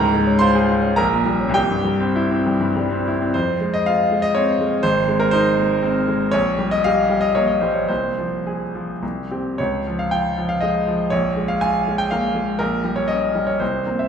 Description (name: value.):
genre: classical, romantic character piece for solo piano.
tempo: 98-125 BPM.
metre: 3/4.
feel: rubato.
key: F minor.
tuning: A4 = 439 Hz.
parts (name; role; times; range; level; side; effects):
bright baby grand piano; solo; 0.0-14.1 s; Ab1 to C6; -17 LUFS; equal; none.
room: wet recital hall reverb, RT60 1.3 s.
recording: recorded in a church or concert hall.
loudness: -17 LUFS.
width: side -7 dB against mid.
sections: 0.0-3.3 A section; 3.3-14.1 B section.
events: none.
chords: 0.0 Db; 1.0 Gdim/Bb; 1.6 C; 3.3 Fm; 4.8 Ab; 6.3 Bbm69; 7.9 Fm/C; 9.0 C5; 9.6 Db; 11.1 Bb5; 12.6 Gdim/Bb.